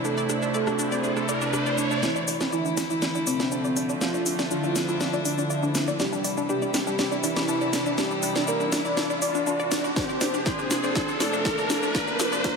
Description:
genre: melodic techno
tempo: 121 BPM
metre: 4/4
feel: straight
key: D minor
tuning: A4 = 437 Hz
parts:
  - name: fat analog lead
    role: melody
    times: 0.0-12.6 s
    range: C4 to D5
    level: -28 LUFS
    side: right 1 dB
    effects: wide subtle chorus, cassette tape, sidechain pumping, tape echo
  - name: rich chamber string section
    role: sustained chords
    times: 0.0-12.6 s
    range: C3 to C5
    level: -32 LUFS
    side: left 2 dB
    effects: sidechain pumping
  - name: analog pluck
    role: arpeggios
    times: 0.0-12.6 s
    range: D4 to D5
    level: -30 LUFS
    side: equal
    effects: chorus, phaser, sidechain pumping, analog delay
  - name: brassy analog pad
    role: stabs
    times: 0.0-6.6, 10.5-12.6 s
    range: C3 to E4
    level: -32 LUFS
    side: equal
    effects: chorus, sidechain pumping, analog delay
  - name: techno drum kit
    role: drums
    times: 0.0-12.5 s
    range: hi-hat, rim click, shaker, snare drum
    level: -28 LUFS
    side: equal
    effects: overdrive
  - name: riser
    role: sound effects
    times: 0.3-12.6 s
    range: none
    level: -32 LUFS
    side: equal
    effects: none
  - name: round analog bass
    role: bass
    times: 2.2-12.4 s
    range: none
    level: barely audible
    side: none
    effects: none
  - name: electronic kick drum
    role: drums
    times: 10.0-12.5 s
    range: none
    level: -31 LUFS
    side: equal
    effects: overdrive
room: wet lush hall reverb, RT60 2.5 s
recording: dreamy mix soaked in reverb, high-pass filter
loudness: -23 LUFS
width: side -5 dB against mid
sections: 0.0-2.0 A section; 2.0-12.6 B section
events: riser 0.3-2.0, 2.0-12.6; build-up 2.0-12.6; drum fill 2.0-12.6; filter sweep on synth arpeggio sound 2.0-12.6; filter sweep on analog synth pad 2.0-12.6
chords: 0.0 Am; 2.0 Dmadd9; 6.0 C; 10.0 Bbadd9

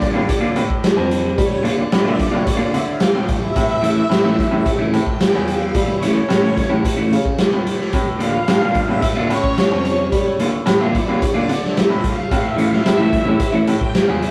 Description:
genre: psychedelic rock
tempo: 110 BPM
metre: 4/4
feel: straight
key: unclear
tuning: A4 = 440 Hz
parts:
  - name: string machine, full ensemble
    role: sustained chords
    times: 0.0-14.3 s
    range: C#5 to G5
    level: -26 LUFS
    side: equal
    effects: ensemble chorus
  - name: electric guitar through a small old amp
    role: riff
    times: 0.0-14.1 s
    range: D3 to F4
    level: -22 LUFS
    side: equal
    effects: tremolo
  - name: clear grand piano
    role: bass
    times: 0.0-14.3 s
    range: E2 to G3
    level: -26 LUFS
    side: equal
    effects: none
  - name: tanpura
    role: drone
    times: 0.0-14.3 s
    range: A2 to A3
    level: -36 LUFS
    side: equal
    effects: none
  - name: raw garage drum kit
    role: drums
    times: 0.0-14.3 s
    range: hi-hat, kick drum, snare drum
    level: -20 LUFS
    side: equal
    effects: none
room: light reverb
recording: rough rehearsal-room recording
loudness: -17 LUFS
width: mono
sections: 0.0-14.3 A section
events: string machine solo 0.0-14.3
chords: 0.0 Bb; 3.6 A; 7.9 Bb; 12.3 A

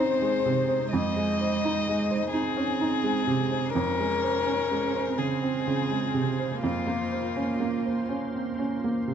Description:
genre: neoclassical piano and strings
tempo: 42 BPM (dotted quarters)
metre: 6/8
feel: rubato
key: F minor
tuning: A4 = 441 Hz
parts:
  - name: warm violin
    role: melody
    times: 0.0-8.1 s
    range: F4 to Eb5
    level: -29 LUFS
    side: left 6 dB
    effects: none
  - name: dark cello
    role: second line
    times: 0.0-8.8 s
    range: Ab3 to Db4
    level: -31 LUFS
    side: right 5 dB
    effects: slapback echo
  - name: felt-muted upright piano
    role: accompaniment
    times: 0.0-9.1 s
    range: F2 to C5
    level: -28 LUFS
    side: right 3 dB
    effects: none
  - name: soft additive organ-like pad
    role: sustained chords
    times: 0.0-9.1 s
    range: Ab3 to C5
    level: -36 LUFS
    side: right 1 dB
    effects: ensemble chorus, built-in reverb
room: moderate large studio reverb, RT60 0.8 s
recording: dark, warm production, nothing above 8.0 kHz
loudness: -24 LUFS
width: side -8 dB against mid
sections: 0.0-9.1 A section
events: none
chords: 0.0 Fm7; 3.7 Dbmaj7/F; 6.6 Bbmadd9/F

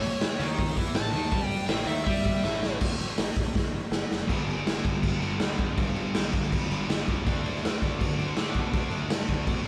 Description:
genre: garage rock duo or trio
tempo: 162 BPM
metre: 4/4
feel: straight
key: unclear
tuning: A4 = 440 Hz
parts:
  - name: overdriven slide guitar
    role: melody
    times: 0.0-2.8 s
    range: C#5 to A5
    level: -35 LUFS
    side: equal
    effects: none
  - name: thick fuzz guitar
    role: riff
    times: 0.0-9.7 s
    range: G2 to G4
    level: -34 LUFS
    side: equal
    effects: distortion
  - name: fuzz picked electric bass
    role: bass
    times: 0.0-9.7 s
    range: F#1 to B2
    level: -37 LUFS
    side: equal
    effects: overdrive
  - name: raw garage drum kit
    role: drums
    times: 0.0-9.7 s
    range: crash cymbal, hi-hat, kick drum, snare drum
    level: -30 LUFS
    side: equal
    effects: none
room: light reverb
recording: band playing live in one room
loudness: -28 LUFS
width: mono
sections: 0.0-2.8 A section; 2.8-4.3 B section; 4.3-9.7 C section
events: electric slide guitar solo 0.0-2.8; drum fill 2.4-2.8, 3.5-4.3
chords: 0.0 A5; 2.8 N.C.; 4.3 G5; 7.3 D5

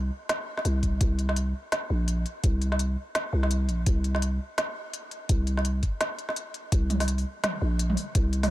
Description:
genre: half-time drum and bass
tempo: 168 BPM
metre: 4/4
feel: swing 58% on 16ths, half-time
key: unclear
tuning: A4 = 439 Hz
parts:
  - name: growling 808-style bass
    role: bass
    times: 0.0-8.5 s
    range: Bb1 to C2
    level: -25 LUFS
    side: equal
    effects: none
  - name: organic electronic drum kit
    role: drums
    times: 0.3-8.5 s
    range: hi-hat, snare drum, toms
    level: -31 LUFS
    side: equal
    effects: none
  - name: electronic kick drum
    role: drums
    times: 0.8-8.2 s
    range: none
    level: -25 LUFS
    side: equal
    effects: none
room: little or no reverb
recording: none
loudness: -25 LUFS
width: side -16 dB against mid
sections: 0.0-8.5 A section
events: break 6.0-6.7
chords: none

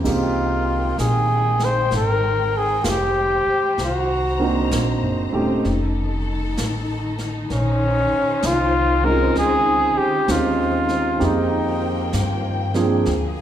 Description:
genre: jazz ballad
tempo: 65 BPM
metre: 4/4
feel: swing 66% on 8ths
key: F minor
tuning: A4 = 440 Hz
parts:
  - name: warm concert grand piano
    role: accompaniment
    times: 0.0-13.1 s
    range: F3 to Ab4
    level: -23 LUFS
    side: right 3 dB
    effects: none
  - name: dark studio string section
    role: sustained chords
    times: 0.0-13.4 s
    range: D3 to Bb5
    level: -28 LUFS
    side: left 2 dB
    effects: none
  - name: upright bass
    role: bass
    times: 0.0-13.4 s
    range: Eb1 to G2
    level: -24 LUFS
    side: equal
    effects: none
  - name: jazz brush drum kit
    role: drums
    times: 0.0-13.4 s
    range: brushed snare drum, hi-hat, kick drum, ride cymbal, snare drum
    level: -30 LUFS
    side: equal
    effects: none
  - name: warm flugelhorn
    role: melody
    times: 0.1-12.2 s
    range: Db4 to C5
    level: -20 LUFS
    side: left 1 dB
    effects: none
room: wet recital hall reverb, RT60 1.4 s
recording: recorded in a church or concert hall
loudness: -18 LUFS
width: side -10 dB against mid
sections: 0.0-13.4 A section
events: none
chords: 0.0 Fm11; 3.8 Cm7b5; 5.6 F7; 7.5 Bbm11; 11.2 Fm11

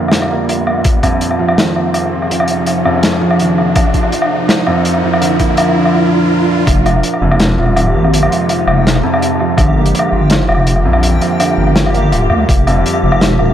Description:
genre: half-time drum and bass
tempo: 165 BPM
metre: 4/4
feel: half-time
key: F dorian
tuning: A4 = 440 Hz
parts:
  - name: bowed-like drone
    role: sustained chords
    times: 0.0-13.5 s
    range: Bb2 to Bb4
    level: -18 LUFS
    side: equal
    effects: built-in reverb, sidechain pumping
  - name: felt-muted upright piano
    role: arpeggios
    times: 0.0-13.5 s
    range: F2 to F4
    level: -17 LUFS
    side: right 3 dB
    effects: low-pass filter, tape echo
  - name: riser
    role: sound effects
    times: 0.0-6.7 s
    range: none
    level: -20 LUFS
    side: right 1 dB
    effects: none
  - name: crunchy breakbeat drum kit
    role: drums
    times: 0.1-13.5 s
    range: hi-hat, snare drum, woodblock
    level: -15 LUFS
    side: left 1 dB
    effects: none
  - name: electronic kick drum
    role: drums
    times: 0.8-1.1, 3.8-6.7, 9.6-9.7, 12.5-12.6 s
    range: none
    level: -13 LUFS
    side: equal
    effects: overdrive
  - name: deep soft wobble bass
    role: bass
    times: 6.7-13.5 s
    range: D1 to D2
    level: -13 LUFS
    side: equal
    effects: chorus
  - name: backwards swelling texture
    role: texture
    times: 7.2-13.5 s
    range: G4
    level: -23 LUFS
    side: left 1 dB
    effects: built-in reverb
room: moderate echo chamber reverb, RT60 1.3 s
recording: none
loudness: -10 LUFS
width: side -10 dB against mid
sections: 0.0-6.7 A section; 6.7-13.5 B section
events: build-up 0.0-6.7; riser 0.0-6.7; filter sweep on synth drone 0.0-6.7; drop 6.7-13.5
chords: 0.0 Gm; 0.9 Fm7; 3.8 Bb; 6.7 Fm7; 9.6 Gm; 12.5 Fm7

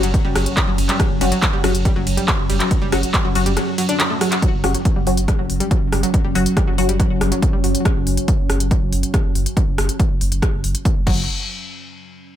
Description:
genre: driving peak-time techno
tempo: 140 BPM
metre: 4/4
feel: straight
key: unclear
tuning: A4 = 440 Hz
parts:
  - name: analog pluck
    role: riff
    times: 0.0-7.7, 11.1-11.3 s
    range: F#3 to F#4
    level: -24 LUFS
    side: equal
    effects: chorus, sidechain pumping, ping-pong delay
  - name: saturated sub bass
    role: bass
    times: 0.0-11.3 s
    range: F#1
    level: -22 LUFS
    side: equal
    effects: sidechain pumping, low-pass filter
  - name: deep dark ambient pad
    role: drone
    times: 0.0-11.3 s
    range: F#3 to C#4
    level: -26 LUFS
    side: equal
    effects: chorus, built-in reverb, sidechain pumping
  - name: techno drum kit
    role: drums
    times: 0.0-11.2 s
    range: crash cymbal, handclaps, hi-hat, ride cymbal, rim click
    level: -23 LUFS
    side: equal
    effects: sidechain pumping on hats, sidechain pumping on cymbals
  - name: electronic kick drum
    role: drums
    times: 0.1-11.2 s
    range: none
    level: -19 LUFS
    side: equal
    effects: none
  - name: filtered dub chord stab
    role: stabs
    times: 1.2-6.9 s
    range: F#3 to F#4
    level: -23 LUFS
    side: left 4 dB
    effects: phaser, sidechain pumping, digital delay
room: light reverb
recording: none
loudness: -16 LUFS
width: side -11 dB against mid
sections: 0.0-4.4 A section; 4.4-11.3 B section; 11.3-12.4 C section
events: drop 0.0-4.4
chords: 0.0 F#5; 11.3 N.C.

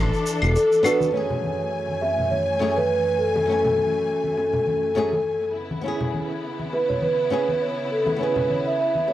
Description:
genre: sunset chillout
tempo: 102 BPM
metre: 4/4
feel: swing 55% on 16ths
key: F# minor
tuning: A4 = 441 Hz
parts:
  - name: flamenco guitar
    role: accompaniment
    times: 0.0-9.1 s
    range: F#2 to G#5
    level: -29 LUFS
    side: equal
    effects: auto-pan
  - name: clear studio string section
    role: sustained chords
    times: 0.0-9.1 s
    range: F#2 to G#5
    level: -29 LUFS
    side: left 2 dB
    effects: none
  - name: fingered electric bass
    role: bass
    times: 0.0-0.6 s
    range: E1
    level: -21 LUFS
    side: equal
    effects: transformer saturation
  - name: shaker and claves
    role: drums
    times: 0.1-9.1 s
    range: none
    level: -28 LUFS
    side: left 1 dB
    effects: low-pass filter on perc, low-pass filter on snare, low-pass filter on room
  - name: congas and bongos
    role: percussion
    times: 0.4-9.1 s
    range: none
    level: -31 LUFS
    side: left 2 dB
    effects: none
  - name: vibraphone with soft mallets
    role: melody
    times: 0.6-9.1 s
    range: A4 to E5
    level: -22 LUFS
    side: right 1 dB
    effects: tape echo
room: light reverb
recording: dry, gritty hardware recording, transformer saturation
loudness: -20 LUFS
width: side -13 dB against mid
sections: 0.0-1.1 A section; 1.1-9.1 B section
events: none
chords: 0.0 E7sus4; 1.1 F#m9; 5.6 C#m7

